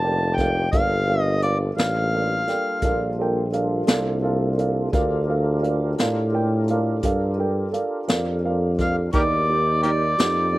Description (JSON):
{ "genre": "slow blues", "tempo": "57 BPM (dotted quarters)", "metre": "12/8", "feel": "straight", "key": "G minor", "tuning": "A4 = 440 Hz", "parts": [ { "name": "warm harmonica", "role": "melody", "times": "0.0-10.6 s", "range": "G4 to A5", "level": "-22 LUFS", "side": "left 1 dB", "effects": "overdrive, slapback echo" }, { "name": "dark upright piano", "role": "accompaniment", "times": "0.0-10.6 s", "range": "Eb4 to G5", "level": "-26 LUFS", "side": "right 3 dB", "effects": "none" }, { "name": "tonewheel organ", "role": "sustained chords", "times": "0.0-10.6 s", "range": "G3 to C5", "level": "-32 LUFS", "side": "equal", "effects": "slow rotary speaker, overdrive, chorus vibrato" }, { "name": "warm tuba", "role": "bass", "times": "0.0-10.6 s", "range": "F1 to A2", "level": "-23 LUFS", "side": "equal", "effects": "none" }, { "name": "vintage brush drum kit", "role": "drums", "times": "0.4-10.4 s", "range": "hi-hat, kick drum, snare drum", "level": "-23 LUFS", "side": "equal", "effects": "none" } ], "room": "little or no reverb", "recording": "recorded outdoors, with no room sound", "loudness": "-19 LUFS", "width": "side -18 dB against mid", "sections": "0.0-10.6 A section", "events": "none", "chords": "0.0 Gm7; 9.1 Cm7", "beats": "| 0.72 1.78 2.83 3.88 | 4.94 5.99 7.04 8.09 | 9.15 10.20" }